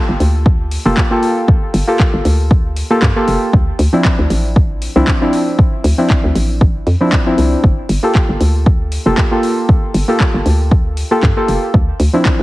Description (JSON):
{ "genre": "deep house", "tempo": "117 BPM", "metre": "4/4", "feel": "swing 55% on 16ths", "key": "G dorian", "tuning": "A4 = 440 Hz", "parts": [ { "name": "deep mellow chord stab", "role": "stabs", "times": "0.0-12.4 s", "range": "F3 to A4", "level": "-16 LUFS", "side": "equal", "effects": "chorus, sidechain pumping, tape echo" }, { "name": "hollow knocking FM bass", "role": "bass", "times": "0.1-12.4 s", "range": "F1 to G2", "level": "-15 LUFS", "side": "equal", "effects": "sidechain pumping" }, { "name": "house drum kit", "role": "drums", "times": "0.2-12.4 s", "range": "handclaps, hi-hat", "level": "-23 LUFS", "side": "equal", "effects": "overdrive, vintage 12-bit sampler grit" }, { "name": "electronic kick drum", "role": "drums", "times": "0.5-12.4 s", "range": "none", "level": "-12 LUFS", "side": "equal", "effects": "overdrive, vintage 12-bit sampler grit" } ], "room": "digital ambience", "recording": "heavily compressed radio sound, multiband compression, cassette tape", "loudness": "-11 LUFS", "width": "side -18 dB against mid", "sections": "0.0-12.4 A section", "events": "none", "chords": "0.0 Gm9; 3.5 Dm9; 7.6 Gm9; 11.7 Dm9", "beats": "0.46 0.97 | 1.48 2.00 2.51 3.02 | 3.54 4.05 4.56 5.07 | 5.59 6.10 6.61 7.12 | 7.64 8.15 8.66 9.18 | 9.69 10.20 10.71 11.23 | 11.74 12.25" }